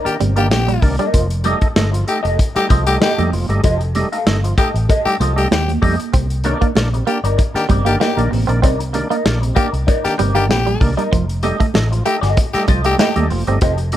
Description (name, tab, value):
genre	funk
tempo	96 BPM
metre	4/4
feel	straight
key	unclear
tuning	A4 = 440 Hz
part	electric guitar at the edge of break-up	accompaniment	0.0-14.0 s	Eb4 to F5	-23 LUFS	left 2 dB	wah, spring reverb
part	overdriven tonewheel organ	stabs	0.0-14.0 s	C3 to Eb4	-23 LUFS	right 1 dB	chorus vibrato
part	growling tenor saxophone	second line	0.1-13.2 s	G4	-20 LUFS	left 4 dB	none
part	vintage muted fingered electric bass	bass	0.1-14.0 s	F1 to F2	-18 LUFS	equal	none
part	warm soul drum kit	drums	0.1-14.0 s	hi-hat, kick drum, snare drum	-18 LUFS	equal	none
part	clean electric guitar	riff	0.2-1.1, 6.1-14.0 s	F3 to C4	-23 LUFS	right 8 dB	vibrato effect
part	congas	percussion	0.2-14.0 s	none	-26 LUFS	right 6 dB	none
room	little or no reverb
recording	none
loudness	-14 LUFS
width	side -12 dB against mid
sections	0.0-14.0 A section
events	none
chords	0.0 Cm9; 1.1 F9; 6.1 Cm9; 11.1 F9